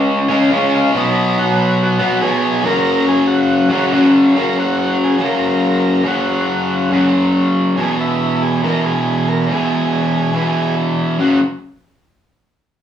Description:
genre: rock.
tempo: 140 BPM.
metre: 4/4.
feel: straight.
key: F# mixolydian.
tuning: A4 = 439 Hz.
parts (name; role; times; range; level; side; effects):
raw garage guitar; riff; 0.0-11.4 s; E2 to C#4; -14 LUFS; equal; overdrive.
overdriven combo organ; melody; 0.8-11.4 s; D#4 to C#5; -21 LUFS; equal; none.
room: wet small room reverb, RT60 0.5 s.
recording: rough rehearsal-room recording, studio reverb.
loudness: -13 LUFS.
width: side -9 dB against mid.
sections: 0.0-4.3 A section; 4.3-11.2 B section; 11.2-12.8 C section.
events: none.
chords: 0.0 C#; 0.9 B; 2.6 F#; 7.8 E; 11.2 F#5.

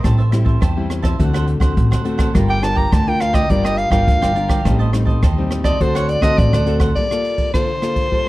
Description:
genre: samba and choro.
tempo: 104 BPM.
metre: 4/4.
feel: straight.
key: G minor.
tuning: A4 = 440 Hz.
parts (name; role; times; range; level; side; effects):
cavaquinho; accompaniment; 0.0-7.0 s; D4 to A5; -27 LUFS; right 4 dB; none.
nylon-string guitar; accompaniment; 0.0-8.3 s; A2 to Bb4; -22 LUFS; left 3 dB; none.
upright bass; bass; 0.0-6.9 s; G1 to E2; -18 LUFS; equal; none.
jazz brush drum kit; drums; 0.0-8.3 s; hi-hat, kick drum, ride cymbal, rim click; -19 LUFS; equal; none.
warm soprano saxophone; melody; 2.5-8.3 s; C5 to Bb5; -20 LUFS; equal; plate reverb.
room: light reverb.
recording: dark, warm production.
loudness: -14 LUFS.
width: side -17 dB against mid.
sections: 0.0-7.0 A section; 7.0-8.3 B section.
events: soprano saxophone solo 0.0-7.0.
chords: 0.0 Am7; 1.2 D7; 2.3 Gm7; 4.7 Am7b5; 5.8 D7; 7.0 Gm9.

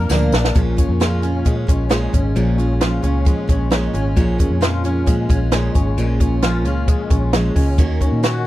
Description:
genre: jangly indie pop.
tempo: 133 BPM.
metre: 4/4.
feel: straight.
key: unclear.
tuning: A4 = 440 Hz.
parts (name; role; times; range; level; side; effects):
picked steel-string acoustic guitar; accompaniment; 0.0-8.5 s; Bb2 to Bb4; -23 LUFS; right 4 dB; none.
direct-recorded clean electric guitar; arpeggios; 0.0-8.5 s; Bb2 to Bb4; -24 LUFS; left 5 dB; ensemble chorus.
vintage muted fingered electric bass; bass; 0.0-8.5 s; Ab1 to Bb2; -19 LUFS; equal; none.
compact cocktail drum kit; drums; 0.1-8.3 s; hi-hat, kick drum, snare drum; -17 LUFS; equal; none.
room: little or no reverb.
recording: dry, close 1970s-style studio recording.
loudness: -15 LUFS.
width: side -15 dB against mid.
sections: 0.6-8.5 A section.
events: drum fill 0.1-0.6.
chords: 0.0 Bb; 0.6 Bbm7; 7.8 Ebm7.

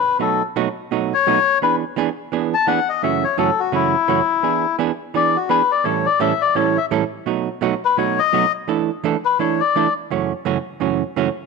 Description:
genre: country.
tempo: 170 BPM.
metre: 4/4.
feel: swing 63% on 8ths.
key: unclear.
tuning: A4 = 439 Hz.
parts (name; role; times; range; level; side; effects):
melodica; melody; 0.0-9.9 s; E4 to A5; -18 LUFS; left 9 dB; none.
hollow-body jazz guitar; accompaniment; 0.2-11.3 s; F#2 to A4; -20 LUFS; right 11 dB; none.
room: moderate echo chamber reverb, RT60 1.7 s.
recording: 1960s-style stereo with parts hard left and right.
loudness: -16 LUFS.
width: side -4 dB against mid.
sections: 0.0-11.5 A section.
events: melodica solo 0.0-11.5.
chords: 0.2 B7; 1.6 E7; 3.0 F#m7; 4.4 E7; 5.9 A7; 7.3 B7; 8.7 E7sus4; 10.1 F#m7.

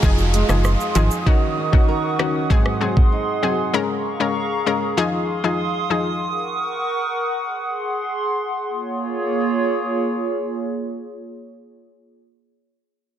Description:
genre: dancehall.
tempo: 97 BPM.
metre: 4/4.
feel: straight.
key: Bb minor.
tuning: A4 = 443 Hz.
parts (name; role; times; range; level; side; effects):
analog pluck; accompaniment; 0.0-6.1 s; Eb3 to Bb4; -22 LUFS; left 4 dB; chorus.
hollow soft pad; sustained chords; 0.0-11.9 s; Bb3 to Eb6; -23 LUFS; right 1 dB; chorus, sidechain pumping.
flamenco guitar; arpeggios; 0.0-4.3 s; F2 to Bb4; -26 LUFS; right 8 dB; ping-pong delay.
organ-like FM bass; bass; 0.0-1.1 s; F1 to Ab1; -18 LUFS; equal; none.
island pop drum kit; drums; 0.0-3.1 s; hi-hat, kick drum, rim click, shaker; -17 LUFS; equal; none.
downlifter; sound effects; 0.0-3.7 s; none; -33 LUFS; equal; none.
room: light reverb.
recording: dense, heavily limited modern master.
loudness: -18 LUFS.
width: side -10 dB against mid.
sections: 0.0-8.7 A section; 8.7-11.2 B section.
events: none.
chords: 0.0 Fm7; 1.3 Ebm7; 2.5 Ab7; 3.7 Bbm7; 5.0 Fm7; 6.2 Ebm7; 7.5 Ab7; 8.7 Bbm7.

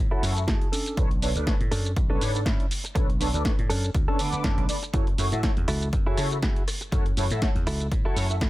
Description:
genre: filtered disco house.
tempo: 121 BPM.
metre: 4/4.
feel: swing 55% on 16ths.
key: F# minor.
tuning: A4 = 440 Hz.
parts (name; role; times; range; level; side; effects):
dry thumbed slap bass; bass; 0.0-8.5 s; B1 to C#3; -28 LUFS; equal; tube saturation, sidechain pumping, low-pass filter.
mellow synth brass; accompaniment; 0.1-8.4 s; D3 to D6; -31 LUFS; equal; chorus, phaser, vintage 12-bit sampler grit, sidechain pumping, low-pass filter.
direct-recorded clean electric guitar; riff; 0.1-8.5 s; C#4 to A5; -32 LUFS; right 2 dB; vintage 12-bit sampler grit, sidechain pumping, low-pass filter.
punchy analog drum machine; drums; 0.2-8.5 s; hi-hat, rim click, shaker, snare drum; -32 LUFS; equal; sidechain pumping on hats, sidechain pumping on perc.
tambourine; percussion; 0.2-8.5 s; none; barely audible; none; none.
electronic kick drum; drums; 0.5-8.5 s; none; -26 LUFS; equal; none.
room: digital ambience.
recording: none.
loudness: -23 LUFS.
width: side -17 dB against mid.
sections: 0.0-8.5 A section.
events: filter sweep 0.0-8.5; clean electric guitar fill 0.2-1.0.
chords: 0.0 F#m7; 0.7 Bm9; 4.9 F#m7.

